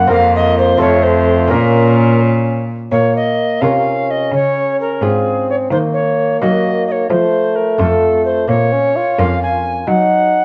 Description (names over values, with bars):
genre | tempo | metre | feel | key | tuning
classical, renaissance-style consort dance | 86 BPM (dotted quarters) | 6/8 | straight | Bb minor | A4 = 440 Hz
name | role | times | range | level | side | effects
mellow alto recorder | melody | 0.0-10.4 s | Ab4 to Ab5 | -18 LUFS | equal | none
dark bassoon | accompaniment | 0.0-10.4 s | A3 to F4 | -19 LUFS | equal | none
lute | accompaniment | 0.0-10.4 s | F2 to Db5 | -24 LUFS | equal | none
rich cello | bass | 0.0-10.4 s | F2 to Gb3 | -19 LUFS | equal | none
room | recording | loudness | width
moderate recital hall reverb, RT60 1.4 s | worn, warbling old tape, cassette tape, warbly pitch drift | -14 LUFS | mono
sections
0.0-2.9 A section; 2.9-10.4 B section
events
none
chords
0.1 Fsus4; 0.8 F; 1.5 Bbm; 4.3 Db; 5.7 Ebm; 7.1 F; 8.5 Bbm; 9.9 N.C.